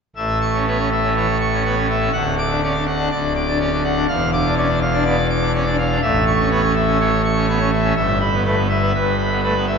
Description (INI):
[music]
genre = classical, organ toccata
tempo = 123 BPM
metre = 4/4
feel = straight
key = A major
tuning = A4 = 441 Hz
[part]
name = pipe organ, full organ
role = solo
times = 0.2-9.8 s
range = D1 to D6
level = -16 LUFS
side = equal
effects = none
[sound]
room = wet concert hall reverb, RT60 2.2 s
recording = heard from further back in the room, nothing above 7.8 kHz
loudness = -16 LUFS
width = side -6 dB against mid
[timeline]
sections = 0.2-9.8 A section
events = none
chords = 0.2 A; 2.1 Dmaj7; 4.1 E5; 6.0 A; 8.0 Em/G